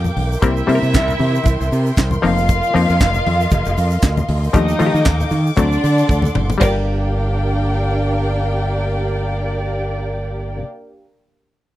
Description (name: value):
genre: disco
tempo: 116 BPM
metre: 4/4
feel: swing 56% on 16ths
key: G minor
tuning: A4 = 439 Hz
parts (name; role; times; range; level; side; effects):
- dark studio violin section; second line; 0.0-10.6 s; Bb3 to G5; -22 LUFS; equal; none
- dark studio string section; sustained chords; 0.0-10.6 s; D4 to D6; -25 LUFS; equal; none
- modern bright fingered electric bass; bass; 0.0-10.6 s; F1 to Eb3; -19 LUFS; equal; none
- congas; percussion; 0.0-6.9 s; none; -26 LUFS; left 3 dB; none
- tube shaker; percussion; 0.1-6.9 s; none; -39 LUFS; right 17 dB; none
- tight funk drum kit; drums; 0.2-6.7 s; crash cymbal, handclaps, hi-hat, kick drum, snare drum, toms; -17 LUFS; equal; none
- muted clav; accompaniment; 0.4-10.6 s; F3 to Bb4; -20 LUFS; left 4 dB; overdrive
room: little or no reverb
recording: dry, close 1970s-style studio recording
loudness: -15 LUFS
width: side -14 dB against mid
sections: 0.0-6.6 A section; 6.6-10.7 B section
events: drum fill 6.1-6.6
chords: 0.4 C7; 2.2 F7sus4; 4.6 Ebmaj9#11; 5.6 D7; 6.6 Gm7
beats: | 0.43 0.94 1.46 1.98 | 2.49 3.01 3.52 4.04 | 4.55 5.07 5.58 6.10 | 6.62 7.13 7.65 8.16 | 8.68 9.19 9.71 10.22